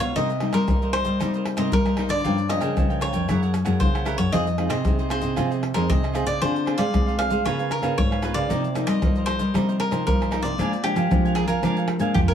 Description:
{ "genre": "samba and choro", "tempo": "115 BPM", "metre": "4/4", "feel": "straight", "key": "unclear", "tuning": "A4 = 441 Hz", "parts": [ { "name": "cavaquinho", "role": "melody", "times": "0.0-12.3 s", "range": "G4 to F5", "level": "-27 LUFS", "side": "left 1 dB", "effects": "plate reverb" }, { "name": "cavaquinho", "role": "accompaniment", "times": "0.0-12.3 s", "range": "D4 to Ab5", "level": "-30 LUFS", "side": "right 6 dB", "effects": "none" }, { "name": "nylon-string guitar", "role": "accompaniment", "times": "0.0-12.3 s", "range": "F2 to Bb4", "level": "-29 LUFS", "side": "left 3 dB", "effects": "none" }, { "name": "nylon-string guitar", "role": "bass", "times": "0.0-12.3 s", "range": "F2 to Ab3", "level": "-24 LUFS", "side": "equal", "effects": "none" }, { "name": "maracas, pandeiro, surdo and tamborim", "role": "percussion", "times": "0.0-12.3 s", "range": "none", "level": "-25 LUFS", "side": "equal", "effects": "none" } ], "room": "light reverb", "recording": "none", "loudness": "-20 LUFS", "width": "side -9 dB against mid", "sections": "0.0-12.3 A section", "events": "drum fill 11.9-12.3", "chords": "0.2 Cm7; 2.2 Gm7b5; 3.3 Gb9; 4.3 Fm7; 6.4 Dm7b5; 7.5 Db6; 8.5 Cm7; 10.6 Bb7", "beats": "| 0.15 0.68 1.20 1.72 | 2.24 2.77 3.29 3.81 | 4.33 4.85 5.38 5.90 | 6.42 6.94 7.46 7.99 | 8.51 9.03 9.55 10.07 | 10.59 11.12 11.64 12.16" }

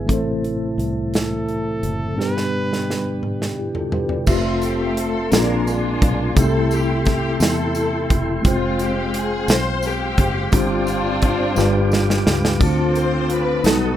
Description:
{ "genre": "slow gospel", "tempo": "58 BPM (dotted quarters)", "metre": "6/8", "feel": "straight", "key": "unclear", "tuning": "A4 = 445 Hz", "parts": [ { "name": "mellow tine electric piano", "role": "accompaniment", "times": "0.0-14.0 s", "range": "G2 to G5", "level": "-22 LUFS", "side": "left 1 dB", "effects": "medium stereo tremolo, plate reverb" }, { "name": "mellow tonewheel organ", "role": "sustained chords", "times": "0.0-14.0 s", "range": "B2 to D#6", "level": "-27 LUFS", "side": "right 2 dB", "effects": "slow rotary speaker, plate reverb" }, { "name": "fingered electric bass", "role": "bass", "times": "0.0-14.0 s", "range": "E1 to E2", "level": "-25 LUFS", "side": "equal", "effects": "none" }, { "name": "modern studio drum kit", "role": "drums", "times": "0.1-13.8 s", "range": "crash cymbal, hi-hat, kick drum, snare drum, splash cymbal, toms", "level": "-20 LUFS", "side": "right 1 dB", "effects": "none" }, { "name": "clear trumpet", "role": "melody", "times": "1.2-3.2 s", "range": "A4 to B4", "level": "-29 LUFS", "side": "equal", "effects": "tape echo" }, { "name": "warm studio string section", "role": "melody", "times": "4.3-14.0 s", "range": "Ab3 to C5", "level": "-23 LUFS", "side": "left 2 dB", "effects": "plate reverb" }, { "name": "tambourine", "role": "percussion", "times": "4.3-14.0 s", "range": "none", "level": "-36 LUFS", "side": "left 4 dB", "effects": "none" } ], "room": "moderate studio reverb, RT60 0.6 s", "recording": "rough home demo mix", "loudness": "-17 LUFS", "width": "side -11 dB against mid", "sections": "0.0-4.3 A section; 4.3-14.0 B section", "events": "drum fill 2.2-4.3, 11.6-12.6", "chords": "0.1 Am; 2.2 G; 4.3 Fmaj7; 5.3 Bb9; 6.4 C6; 8.4 Fmadd9; 10.5 G7sus4; 11.6 G7; 12.6 Dm7", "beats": "| 0.09 1.14 | 2.18 3.23 | 4.28 5.32 | 6.36 7.41 | 8.45 9.49 | 10.53 11.57 | 12.61 13.65" }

